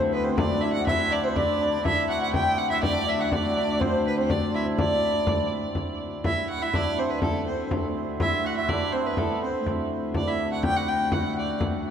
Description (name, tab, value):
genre	medieval dance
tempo	123 BPM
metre	2/4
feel	straight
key	D mixolydian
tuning	A4 = 440 Hz
part	hammered dulcimer	second line	0.0-11.9 s	A3 to G4	-30 LUFS	right 4 dB	none
part	mellow hollow tenor recorder	second line	0.0-5.5 s	B4 to G5	-29 LUFS	left 4 dB	none
part	rich viola da gamba	drone	0.0-11.9 s	D2	-31 LUFS	left 2 dB	none
part	rich fiddle	melody	0.1-11.6 s	A4 to G5	-27 LUFS	equal	tape echo
part	frame drum	percussion	0.1-11.9 s	none	-29 LUFS	left 2 dB	none
room	wet concert hall reverb, RT60 2.1 s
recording	none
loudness	-23 LUFS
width	side -8 dB against mid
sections	0.0-5.8 A section; 5.8-11.9 B section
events	none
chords	none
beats	0.38 | 0.87 1.36 | 1.85 2.34 | 2.83 3.32 | 3.80 4.29 | 4.78 5.27 | 5.76 6.25 | 6.74 7.22 | 7.71 8.20 | 8.69 9.17 | 9.66 10.15 | 10.64 11.12 | 11.61